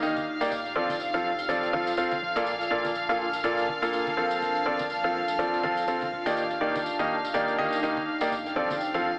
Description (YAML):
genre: piano house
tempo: 123 BPM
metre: 4/4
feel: swing 57% on 16ths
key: F mixolydian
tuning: A4 = 439 Hz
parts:
  - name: rich chamber violin section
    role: sustained chords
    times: 0.0-9.2 s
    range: F5 to F6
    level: -32 LUFS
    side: equal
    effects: none
  - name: bright upright piano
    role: riff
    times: 0.0-9.1 s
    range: Bb2 to F5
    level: -26 LUFS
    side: equal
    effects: digital delay
  - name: organ-like FM bass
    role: bass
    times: 0.0-9.2 s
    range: Eb1 to Bb1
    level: -54 LUFS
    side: equal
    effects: none
  - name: tambourine and congas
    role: percussion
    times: 0.0-9.0 s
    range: none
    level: -43 LUFS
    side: equal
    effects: none
  - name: deep dark ambient pad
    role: texture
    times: 0.0-9.2 s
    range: D4 to A5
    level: -33 LUFS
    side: equal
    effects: chorus, built-in reverb
room: wet lush hall reverb, RT60 1.5 s, studio reverb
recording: heavily compressed radio sound, multiband compression, AM radio sound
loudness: -24 LUFS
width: side -37 dB against mid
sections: 0.0-9.2 A section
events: none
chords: 0.0 Ebmaj7; 0.5 F6; 2.2 Bbmaj7; 4.4 F6; 6.1 Ebmaj7; 8.3 F6